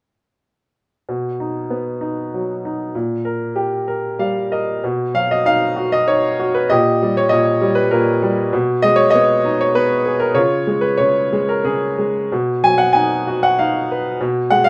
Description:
classical, lyrical solo piano; 90-100 BPM; 3/4; rubato; B lydian; A4 = 440 Hz
bright upright piano; solo; 1.1-14.7 s; A#2 to G#5; -17 LUFS; equal
light reverb; dark, warm production; -18 LUFS; mono
1.1-4.8 A section; 4.8-14.7 B section
upright piano fill 3.9-4.8
1.1 B; 2.9 D#add9/A#; 4.8 B; 6.7 D#7b13/A#; 8.5 G#m/B; 10.4 C#; 12.3 B
| 1.07 1.70 2.33 | 2.94 3.54 4.18 | 4.82 5.45 6.08 | 6.70 7.32 7.92 | 8.53 9.14 9.75 | 10.36 11.00 11.65 | 12.31 12.95 13.59 | 14.21

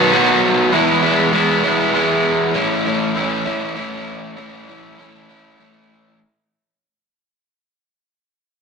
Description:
rock; 66 BPM (dotted quarters); 6/8; straight; A4 = 438 Hz
overdriven electric guitar; solo; 0.0-6.2 s; A2 to F#4; -15 LUFS; equal
wet stone room reverb, RT60 1.2 s; rough rehearsal-room recording, tube saturation; -14 LUFS; side -5 dB against mid
0.0-6.2 A section
fade-out 0.0-6.2
0.0 B; 0.7 E; 2.5 A
| 0.72 1.64 | 2.55 3.46 | 4.37 5.29

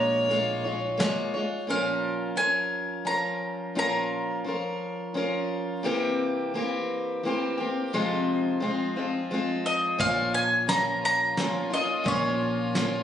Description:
folk; 87 BPM; 3/4; straight; Bb minor; A4 = 445 Hz
bowl-back mandolin; melody; 0.0-5.5, 9.7-13.0 s; Db5 to Bb5; -26 LUFS; equal; plate reverb
warm fiddle; second line; 0.0-1.3, 10.0-13.0 s; F4 to Db5; -31 LUFS; right 2 dB
picked steel-string acoustic guitar; accompaniment; 0.0-13.0 s; F2 to Db5; -27 LUFS; left 1 dB
upright bass; bass; 0.0-1.0, 10.0-13.0 s; Bb1; -36 LUFS; left 1 dB
soft brush drum kit; drums; 0.3-1.2, 10.0-12.9 s; hi-hat, kick drum, snare drum; -30 LUFS; equal
moderate studio reverb, RT60 0.6 s; recorded on a phone in the room, studio reverb, compression, nothing above 10.7 kHz; -24 LUFS; side -9 dB against mid
0.0-1.7 A section; 1.7-10.0 B section; 10.0-13.0 C section
0.0 Bbm7; 1.7 Bbm; 5.8 C7; 7.9 Fm; 10.0 Bbm
0.30 0.99 | 1.69 2.38 3.07 | 3.76 4.46 5.15 | 5.84 6.54 7.23 | 7.92 8.61 9.30 | 9.99 10.68 11.37 | 12.05 12.74

